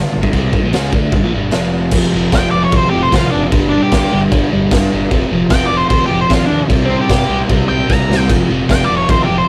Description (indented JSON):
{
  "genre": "garage rock duo or trio",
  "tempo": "151 BPM",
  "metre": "4/4",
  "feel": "straight",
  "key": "unclear",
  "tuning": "A4 = 439 Hz",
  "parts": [
    { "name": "crunchy overdriven guitar", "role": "riff", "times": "0.0-9.5 s", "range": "F2 to D4", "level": "-18 LUFS", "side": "equal", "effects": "none" },
    { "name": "picked electric bass", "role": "bass", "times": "0.0-9.4 s", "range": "F1 to G2", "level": "-25 LUFS", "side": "equal", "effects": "overdrive" },
    { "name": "raw garage drum kit", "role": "drums", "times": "0.2-9.2 s", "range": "crash cymbal, kick drum, snare drum, splash cymbal", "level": "-18 LUFS", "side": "equal", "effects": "none" },
    { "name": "octave-fuzz lead guitar", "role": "melody", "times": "2.4-9.5 s", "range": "C4 to Bb5", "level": "-19 LUFS", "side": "equal", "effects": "distortion" }
  ],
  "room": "light reverb",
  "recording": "rough rehearsal-room recording, warm saturation",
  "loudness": "-14 LUFS",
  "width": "mono",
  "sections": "0.0-1.9 A section; 1.9-9.5 B section",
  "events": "drum fill 7.9-8.3",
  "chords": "0.0 Gm; 1.5 F5; 3.5 G5; 5.1 F5; 6.7 C5; 8.3 F5"
}